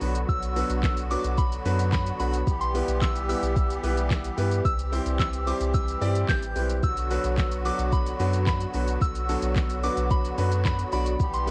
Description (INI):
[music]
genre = dance-pop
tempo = 110 BPM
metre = 4/4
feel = straight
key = unclear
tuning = A4 = 441 Hz
[part]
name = soft synth bell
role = melody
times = 0.0-11.5 s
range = B5 to G6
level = -34 LUFS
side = equal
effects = chorus, cassette tape, tape echo
[part]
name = clear concert grand piano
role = accompaniment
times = 0.0-11.5 s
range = F#3 to D5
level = -34 LUFS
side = equal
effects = sidechain pumping, cassette tape
[part]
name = musette accordion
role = sustained chords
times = 0.0-11.5 s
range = D3 to G4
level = -35 LUFS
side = equal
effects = sidechain pumping, cassette tape
[part]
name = round analog bass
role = bass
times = 0.0-11.5 s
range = A1 to G2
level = -30 LUFS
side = equal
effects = sidechain pumping
[part]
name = smooth R&B drum kit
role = drums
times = 0.0-11.5 s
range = handclaps, hi-hat, kick drum, shaker, snare drum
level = -30 LUFS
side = equal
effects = cassette tape
[sound]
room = little or no reverb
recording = home recording on cassette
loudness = -26 LUFS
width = mono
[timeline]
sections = 0.0-11.5 A section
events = none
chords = 0.0 Bm; 2.5 Em/B; 4.7 C; 6.8 Bm